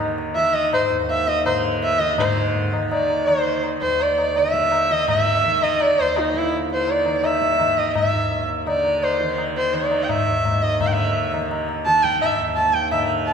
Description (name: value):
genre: indian classical, Hindustani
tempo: 167 BPM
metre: 4/4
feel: straight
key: unclear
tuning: A4 = 438 Hz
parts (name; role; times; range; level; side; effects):
- tanpura; drone; 0.0-13.3 s; Eb2 to Eb3; -27 LUFS; right 2 dB; none
- tabla; percussion; 0.0-13.3 s; none; -25 LUFS; left 3 dB; none
- rich sarangi; melody; 0.4-13.3 s; Eb4 to A5; -19 LUFS; equal; none
room: wet scoring stage reverb, RT60 1.6 s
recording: recorded in a church or concert hall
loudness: -18 LUFS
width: side -6 dB against mid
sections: 0.0-2.2 A section; 2.2-13.3 B section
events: speeding up 0.0-13.3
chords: none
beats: 0.00 0.37 | 0.73 1.10 1.46 1.82 | 2.19 2.55 2.91 3.27 | 3.64 4.00 4.36 4.72 | 5.08 5.44 5.80 6.16 | 6.52 6.88 7.24 7.59 | 7.95 8.31 8.67 9.02 | 9.38 9.74 10.09 10.45 | 10.80 11.16 11.51 11.87 | 12.22 12.57 12.93 13.28